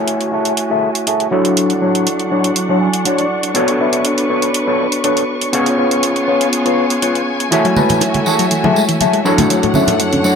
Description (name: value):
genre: nu-disco, nu disco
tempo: 121 BPM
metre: 4/4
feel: straight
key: F# minor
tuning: A4 = 440 Hz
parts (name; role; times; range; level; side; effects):
- overdriven tine electric piano; accompaniment; 0.0-10.4 s; F#3 to G#5; -18 LUFS; equal; tape echo
- rich symphonic string section; sustained chords; 0.0-10.4 s; F#2 to C#6; -20 LUFS; equal; low-pass filter
- clean electric guitar; riff; 0.0-10.4 s; F#3 to G#5; -17 LUFS; left 2 dB; wide subtle chorus, low-pass filter, tape echo
- electronic hi-hat; drums; 0.1-10.2 s; none; -20 LUFS; right 2 dB; overdrive
- soft round pluck; arpeggios; 7.5-10.3 s; E3 to C#4; -18 LUFS; left 2 dB; chorus, tape echo
- tambourine, bongos and congas; percussion; 7.5-10.3 s; none; -21 LUFS; right 4 dB; none
room: light reverb, digital ambience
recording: none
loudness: -12 LUFS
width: side -6 dB against mid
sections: 0.0-10.4 A section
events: filter sweep on string section 0.0-10.4; clean electric guitar fill 2.6-3.6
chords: 0.0 F#m9; 1.3 Dmaj7/F#; 3.6 Bm9; 5.5 C#7; 7.5 F#m9; 9.3 Dmaj7/F#